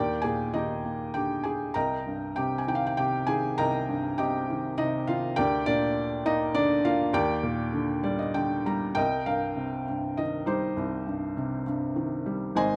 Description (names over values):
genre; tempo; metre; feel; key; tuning
classical, lyrical solo piano; 100 BPM; 3/4; rubato; C minor; A4 = 440 Hz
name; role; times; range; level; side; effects
felt-muted upright piano; solo; 0.0-12.8 s; Ab1 to Bb5; -28 LUFS; equal; none
room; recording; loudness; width
moderate recital hall reverb, RT60 1.6 s; close, detailed microphones; -28 LUFS; mono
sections
0.0-9.0 A section; 9.0-12.8 B section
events
felt piano fill 7.7-9.0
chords
0.0 Ebmaj7; 1.8 Cm7; 5.4 Gm/D; 7.1 Ebmaj7; 9.0 Cm7